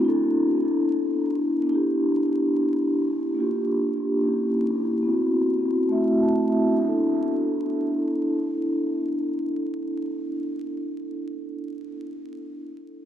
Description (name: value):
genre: hip hop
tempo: 71 BPM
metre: 4/4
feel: swing 66% on 16ths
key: unclear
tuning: A4 = 440 Hz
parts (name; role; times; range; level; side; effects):
- vibraphone with soft mallets; accompaniment; 0.0-12.7 s; A3 to A5; -22 LUFS; equal; cassette tape, low-pass filter, analog delay
room: wet echo chamber reverb, RT60 1.9 s, small room ambience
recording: echo-heavy mix, vinyl crackle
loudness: -22 LUFS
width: side -10 dB against mid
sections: 0.0-6.8 A section; 6.8-10.1 B section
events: filter sweep on vibraphone 0.0-6.8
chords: 0.0 Asus24/B; 1.7 G6/B; 3.4 Bb6; 4.2 A#dim7; 5.1 Cmaj7#11/B; 5.9 Am6; 6.8 Asus24/B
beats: | 0.00 0.84 1.69 2.53 | 3.38 4.22 5.07 5.91 | 6.76 7.60 8.45 9.29